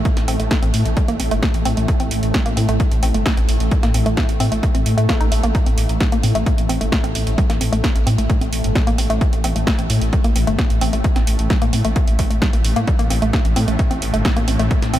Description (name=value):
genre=driving peak-time techno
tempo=131 BPM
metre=4/4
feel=straight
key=A minor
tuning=A4 = 440 Hz
part: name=dark detuned saw bass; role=bass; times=0.0-15.0 s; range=G1 to A2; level=-20 LUFS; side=equal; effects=sidechain pumping
part: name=swarming drone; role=drone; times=0.0-15.0 s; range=A2 to A3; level=-26 LUFS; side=left 1 dB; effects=built-in reverb, sidechain pumping
part: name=electronic kick drum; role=drums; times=0.1-14.8 s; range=none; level=-19 LUFS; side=equal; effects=overdrive
part: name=punchy analog drum machine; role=drums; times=0.1-15.0 s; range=hi-hat, snare drum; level=-25 LUFS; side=right 1 dB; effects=overdrive
part: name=woody wave-folded pluck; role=riff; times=0.3-15.0 s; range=G3 to D#4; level=-23 LUFS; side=equal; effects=chorus, sidechain pumping, tape echo
part: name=swell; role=sound effects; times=4.8-5.5 s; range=none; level=-33 LUFS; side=left 2 dB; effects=none
room=light reverb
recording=none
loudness=-15 LUFS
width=side -13 dB against mid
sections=0.0-15.0 A section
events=swell 4.8-5.5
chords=none